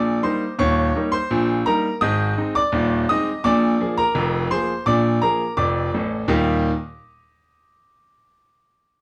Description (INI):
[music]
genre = ragtime piano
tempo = 84 BPM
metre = 2/4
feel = straight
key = Eb major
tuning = A4 = 440 Hz
[part]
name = bright concert grand piano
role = solo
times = 0.0-6.7 s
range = Eb1 to Eb6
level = -20 LUFS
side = equal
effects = none
[sound]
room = wet studio reverb, RT60 0.5 s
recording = heard from further back in the room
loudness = -20 LUFS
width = mono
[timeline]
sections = 0.0-6.3 A section; 6.3-7.7 B section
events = none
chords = 0.0 Eb; 0.6 Eb7; 2.0 Ab; 3.4 Bb7; 6.3 Eb